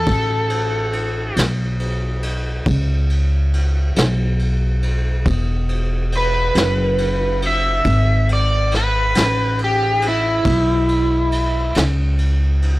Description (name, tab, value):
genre	slow blues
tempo	46 BPM (dotted quarters)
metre	12/8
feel	straight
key	E mixolydian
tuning	A4 = 440 Hz
part	overdriven slide guitar	melody	0.0-11.8 s	E4 to E5	-18 LUFS	equal	none
part	upright bass	bass	0.0-12.8 s	E1 to C#2	-18 LUFS	equal	none
part	vintage brush drum kit	drums	0.1-12.8 s	kick drum, ride cymbal, snare drum	-24 LUFS	equal	none
room	small room ambience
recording	dry, close 1970s-style studio recording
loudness	-16 LUFS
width	side -18 dB against mid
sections	0.0-12.8 A section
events	electric slide guitar solo 0.0-12.8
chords	0.1 Aadd9; 5.3 Eadd9